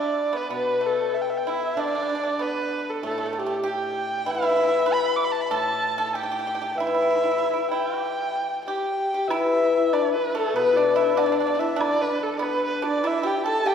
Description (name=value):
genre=chinese traditional, Chinese chamber ensemble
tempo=96 BPM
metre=4/4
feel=straight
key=G gong mode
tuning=A4 = 440 Hz
part: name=dark erhu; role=melody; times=0.0-13.7 s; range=G4 to D6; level=-25 LUFS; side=right 2 dB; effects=none
part: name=pipa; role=second line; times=0.0-13.7 s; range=A3 to B4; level=-30 LUFS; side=right 4 dB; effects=none
part: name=hammered dulcimer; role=accompaniment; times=0.5-13.7 s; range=A2 to E3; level=-25 LUFS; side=left 6 dB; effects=none
part: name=breathy bright low xiao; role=second line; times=8.7-13.7 s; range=D4 to B4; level=-28 LUFS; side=left 1 dB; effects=none
part: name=woodblock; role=percussion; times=9.3-13.7 s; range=none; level=-36 LUFS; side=right 2 dB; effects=none
room=wet concert hall reverb, RT60 2.3 s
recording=heard from further back in the room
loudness=-21 LUFS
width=side -7 dB against mid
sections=0.0-9.3 A section; 9.3-13.7 B section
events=none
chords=none